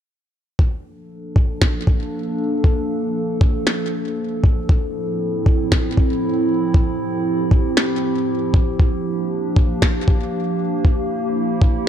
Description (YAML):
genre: IDM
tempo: 117 BPM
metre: 4/4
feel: swing 56% on 16ths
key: Bb lydian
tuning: A4 = 439 Hz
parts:
  - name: warbly tape-like pad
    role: sustained chords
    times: 1.2-11.9 s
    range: A2 to A4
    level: -21 LUFS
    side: right 1 dB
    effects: chorus, built-in reverb
  - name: electronic kick drum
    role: drums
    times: 0.6-11.7 s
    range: none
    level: -15 LUFS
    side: equal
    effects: none
  - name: electronic snare drum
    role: drums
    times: 1.6-9.9 s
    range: none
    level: -21 LUFS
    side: equal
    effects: digital delay
room: light reverb, digital ambience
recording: dark, warm production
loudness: -17 LUFS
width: side -9 dB against mid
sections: 0.6-11.9 A section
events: filter sweep on ambient pad 0.6-11.9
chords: 0.6 Bbmaj7; 4.7 Fmaj7/A; 8.8 Gm7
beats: | 0.59 1.10 1.62 2.13 | 2.64 3.15 3.67 4.18 | 4.69 5.21 5.72 6.23 | 6.74 7.26 7.77 8.28 | 8.79 9.31 9.82 10.33 | 10.85 11.36 11.87